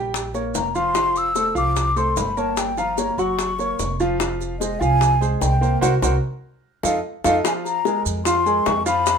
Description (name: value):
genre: Afro-Cuban jazz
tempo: 148 BPM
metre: 4/4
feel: straight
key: unclear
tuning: A4 = 440 Hz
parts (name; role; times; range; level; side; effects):
- clear upright piano; accompaniment; 0.0-9.2 s; F3 to G5; -24 LUFS; right 1 dB; none
- upright bass; bass; 0.0-9.2 s; F1 to F2; -24 LUFS; right 1 dB; none
- bongos; percussion; 0.1-9.2 s; none; -27 LUFS; left 7 dB; none
- maracas; percussion; 0.2-9.2 s; none; -32 LUFS; right 9 dB; none
- mellow hollow concert flute; melody; 0.6-9.2 s; Eb5 to E6; -21 LUFS; left 2 dB; none
room: moderate studio reverb, RT60 0.8 s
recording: minimal, uncompressed stereo recording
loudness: -18 LUFS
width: side -6 dB against mid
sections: 0.0-7.4 A section; 7.4-9.2 B section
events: band accent 5.8-7.4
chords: 0.0 Eb9 (rootless); 1.0 Fmaj9; 2.6 Gm7b5; 3.4 Gb; 4.2 Fmadd9; 5.8 Gb; 6.6 F7; 7.4 Bbsus2